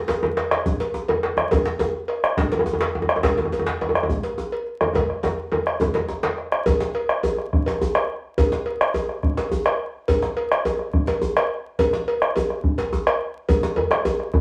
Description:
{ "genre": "west african traditional, West African drum ensemble", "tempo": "140 BPM (dotted quarters)", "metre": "12/8", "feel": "straight", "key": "none", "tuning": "none", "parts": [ { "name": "cowbell", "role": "percussion", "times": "0.1-14.2 s", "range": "none", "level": "-28 LUFS", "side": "equal", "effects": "none" }, { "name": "djembe", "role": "percussion", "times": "0.1-14.4 s", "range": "none", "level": "-29 LUFS", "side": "equal", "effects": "none" }, { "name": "djembe", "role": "percussion", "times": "0.1-6.4, 13.8-14.4 s", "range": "none", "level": "-26 LUFS", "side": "equal", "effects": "none" }, { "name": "bombo", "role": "percussion", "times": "0.4-14.4 s", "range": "none", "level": "-25 LUFS", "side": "equal", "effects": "none" } ], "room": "wet studio reverb, RT60 0.6 s", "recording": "vinyl crackle", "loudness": "-22 LUFS", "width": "mono", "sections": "0.0-6.7 A section; 6.7-14.4 B section", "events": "drum fill 5.0-6.7", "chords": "none" }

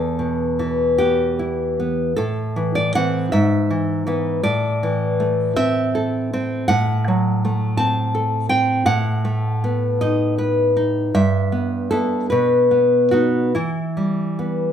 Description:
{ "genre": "romantic piece for solo classical guitar", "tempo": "47-56 BPM (dotted quarters)", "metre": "6/8", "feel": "rubato", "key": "E minor", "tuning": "A4 = 437 Hz", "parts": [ { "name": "nylon-string guitar", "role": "solo", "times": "0.0-14.7 s", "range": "E2 to A5", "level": "-17 LUFS", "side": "equal", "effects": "none" } ], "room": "moderate large studio reverb, RT60 1.1 s", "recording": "band playing live in one room", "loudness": "-17 LUFS", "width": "side -9 dB against mid", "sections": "0.0-14.7 A section", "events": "none", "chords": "0.0 Em; 2.2 Am; 3.3 E/G#; 4.5 Am; 6.7 F#dim/A; 8.9 B7/A; 11.2 Em/G; 12.3 B; 13.6 Em" }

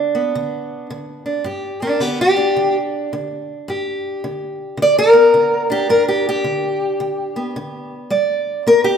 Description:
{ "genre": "acoustic country blues, solo or duo", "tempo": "108 BPM", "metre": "4/4", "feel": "swing 63% on 8ths", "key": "G major", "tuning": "A4 = 437 Hz", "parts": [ { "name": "fingerpicked steel-string acoustic guitar", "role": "solo", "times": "0.0-9.0 s", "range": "G2 to D5", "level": "-15 LUFS", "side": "equal", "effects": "none" } ], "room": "wet recital hall reverb, RT60 1.6 s", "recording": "recorded in a church or concert hall", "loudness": "-15 LUFS", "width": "side -7 dB against mid", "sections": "0.0-1.4 A section; 1.4-9.0 B section", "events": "steel-string acoustic guitar solo 1.4-9.0", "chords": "0.0 G (rootless); 1.4 G" }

